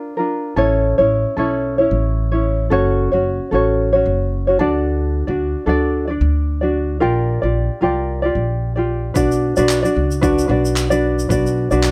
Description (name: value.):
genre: acoustic pop.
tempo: 112 BPM.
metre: 4/4.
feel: swing 55% on 16ths.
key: unclear.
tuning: A4 = 439 Hz.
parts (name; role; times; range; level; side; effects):
tenor ukulele; accompaniment; 0.0-11.9 s; C#4 to D5; -20 LUFS; equal; none.
upright bass; bass; 0.6-11.9 s; F#1 to D2; -22 LUFS; equal; none.
dusty soul sampler-style drum kit; drums; 9.2-11.9 s; handclaps, kick drum; -24 LUFS; equal; overdrive.
tube shaker; percussion; 9.2-11.9 s; none; -34 LUFS; equal; none.
room: light reverb.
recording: none.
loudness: -18 LUFS.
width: mono.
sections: 0.0-9.2 A section; 9.2-11.9 B section.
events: none.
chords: 0.0 Bb; 0.6 A; 2.7 F#m; 4.6 D; 7.0 Bb6; 9.2 Bm.